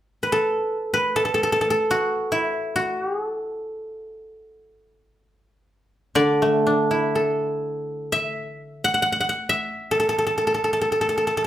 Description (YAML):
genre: chinese traditional, Chinese solo plucked strings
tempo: free time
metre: none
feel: none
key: A zhi mode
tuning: A4 = 439 Hz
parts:
  - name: guzheng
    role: solo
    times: 0.2-11.5 s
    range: D3 to F#5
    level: -20 LUFS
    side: equal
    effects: none
room: light reverb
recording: band playing live in one room, faint mains hum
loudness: -20 LUFS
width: side -12 dB against mid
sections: 0.0-11.5 A section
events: none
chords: none